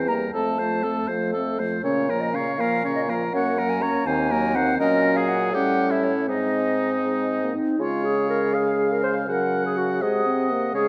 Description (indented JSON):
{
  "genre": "quick classical-period movement for wind quintet",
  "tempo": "81 BPM (dotted quarters)",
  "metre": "6/8",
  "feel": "straight",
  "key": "Bb minor, Db major from 4.8 s",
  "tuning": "A4 = 440 Hz",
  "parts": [
    { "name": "clear oboe", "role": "second line", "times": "0.0-10.9 s", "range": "Eb4 to Gb5", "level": "-31 LUFS", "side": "equal", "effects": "none" },
    { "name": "mellow clarinet", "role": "accompaniment", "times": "0.0-10.9 s", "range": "A3 to C5", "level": "-28 LUFS", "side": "equal", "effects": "none" },
    { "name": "warm French horn", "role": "accompaniment", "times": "0.0-10.9 s", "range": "Db3 to C4", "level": "-32 LUFS", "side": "equal", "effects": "none" },
    { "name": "mellow bassoon", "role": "bass", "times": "0.0-10.9 s", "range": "Eb2 to Db3", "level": "-29 LUFS", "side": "equal", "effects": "none" },
    { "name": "silver concert flute", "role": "melody", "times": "0.1-10.9 s", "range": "C#5 to Bb5", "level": "-30 LUFS", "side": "equal", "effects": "none" }
  ],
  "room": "moderate scoring stage reverb, RT60 1.9 s",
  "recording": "none",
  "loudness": "-23 LUFS",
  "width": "mono",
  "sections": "0.0-7.8 A section; 7.8-10.9 B section",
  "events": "none",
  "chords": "0.3 F; 1.8 Bbm; 3.3 Gb; 4.1 Cm7b5/Eb; 4.8 Gb/Bb; 5.5 A7; 6.3 Ab; 7.8 Db; 9.3 Gb/Db; 10.0 Ab7/C",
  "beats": "| 0.34 1.09 | 1.84 2.59 | 3.33 4.06 | 4.79 5.53 | 6.28 7.04 | 7.80 8.55 | 9.28 10.01 | 10.74"
}